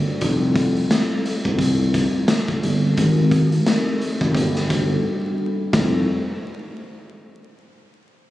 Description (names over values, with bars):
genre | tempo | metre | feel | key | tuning
hip hop, boom-bap hip-hop | 87 BPM | 4/4 | swing 59% on 16ths | F major | A4 = 441 Hz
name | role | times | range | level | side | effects
vibraphone with medium mallets | accompaniment | 0.0-6.1 s | G3 to Bb4 | -22 LUFS | left 2 dB | cassette tape, high-pass filter, low-pass filter
smooth synth bass | bass | 0.0-6.1 s | F1 to C2 | -19 LUFS | equal | none
raw garage drum kit | drums | 0.2-5.9 s | hi-hat, kick drum, snare drum | -22 LUFS | equal | none
vibraphone with soft mallets | melody | 5.7-6.1 s | C5 | -41 LUFS | left 2 dB | high-pass filter, low-pass filter, tape echo
room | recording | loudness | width
little or no reverb | recorded on a phone in the room, club reverb, vinyl crackle, compression | -17 LUFS | side -15 dB against mid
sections
0.0-5.7 A section; 5.7-8.3 B section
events
break 5.0-5.7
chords
0.2 Fmaj9; 3.0 Abmaj9; 4.4 Gmaj9; 5.7 Fmaj9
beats
| 0.22 0.91 1.60 2.29 | 2.98 3.67 4.35 5.04 | 5.73